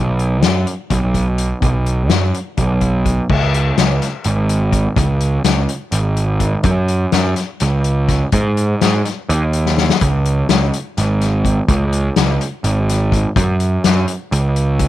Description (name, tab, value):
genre	psychedelic rock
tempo	250 BPM (eighths)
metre	7/8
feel	straight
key	unclear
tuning	A4 = 441 Hz
part	fuzz picked electric bass	bass	0.0-14.9 s	G#1 to G#2	-15 LUFS	right 1 dB	overdrive
part	soft-mallet drum kit	drums	0.2-14.9 s	crash cymbal, hi-hat, kick drum, snare drum	-18 LUFS	left 4 dB	none
room	little or no reverb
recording	1960s-style stereo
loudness	-14 LUFS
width	side -14 dB against mid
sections	0.0-3.3 A section; 3.3-14.9 B section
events	drum fill 9.6-10.0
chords	none